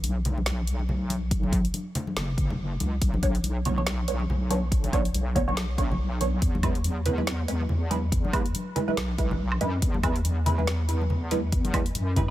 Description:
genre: deep dubstep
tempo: 141 BPM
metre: 4/4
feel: swing 57% on 16ths, half-time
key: B dorian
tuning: A4 = 436 Hz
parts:
  - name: wobble bass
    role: bass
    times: 0.0-12.3 s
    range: F#1 to F#2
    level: -27 LUFS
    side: equal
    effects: chorus
  - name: deep house drum kit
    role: drums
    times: 0.0-12.3 s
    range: hi-hat, snare drum, woodblock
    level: -34 LUFS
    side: equal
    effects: none
  - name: congas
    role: percussion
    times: 0.0-12.3 s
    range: none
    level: -33 LUFS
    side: left 2 dB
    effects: none
  - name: electronic kick drum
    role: drums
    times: 1.3-12.3 s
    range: none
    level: -26 LUFS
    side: equal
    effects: none
  - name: filtered dub chord stab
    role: stabs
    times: 3.2-12.3 s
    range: G#3 to C#5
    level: -31 LUFS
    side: right 3 dB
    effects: phaser, lush chorus, dub echo
room: little or no reverb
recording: none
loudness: -24 LUFS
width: side -14 dB against mid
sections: 0.0-12.3 A section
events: none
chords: 0.0 Bmadd9; 6.4 E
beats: 0.04 0.46 0.89 | 1.31 1.74 2.16 2.59 | 3.02 3.44 3.87 4.29 | 4.72 5.14 5.57 5.99 | 6.42 6.84 7.27 7.70 | 8.12 8.55 8.97 9.40 | 9.82 10.25 10.68 11.10 | 11.53 11.95

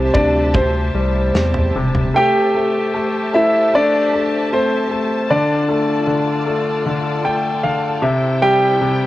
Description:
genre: pop ballad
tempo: 77 BPM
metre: 4/4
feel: straight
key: unclear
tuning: A4 = 440 Hz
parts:
  - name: clear grand piano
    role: melody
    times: 0.0-9.1 s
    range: C4 to G5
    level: -16 LUFS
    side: equal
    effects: cassette tape
  - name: clear concert grand piano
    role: accompaniment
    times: 0.0-9.1 s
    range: C3 to G5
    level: -19 LUFS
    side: left 2 dB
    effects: cassette tape
  - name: clear studio string section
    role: sustained chords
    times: 0.0-9.1 s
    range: E4 to A5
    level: -26 LUFS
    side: left 1 dB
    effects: cassette tape, plate reverb
  - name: picked steel-string acoustic guitar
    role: arpeggios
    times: 0.0-2.7 s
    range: C3 to G4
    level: -26 LUFS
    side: right 3 dB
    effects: cassette tape
  - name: saturated sub bass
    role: bass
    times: 0.0-2.1 s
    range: E1 to E2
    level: -19 LUFS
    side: equal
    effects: none
  - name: natural country drum kit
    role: drums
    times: 0.1-2.1 s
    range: kick drum, snare drum, toms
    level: -21 LUFS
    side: equal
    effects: none
room: light reverb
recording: home recording on cassette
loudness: -14 LUFS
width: side -15 dB against mid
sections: 0.0-2.1 A section; 2.1-9.1 A section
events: grand piano fill 6.8-8.4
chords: 0.0 C6; 2.1 Am7; 5.3 Dm; 8.0 C6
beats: 0.55 1.35 | 2.15 2.94 3.73 4.51 | 5.29 6.07 6.85 7.63 | 8.41

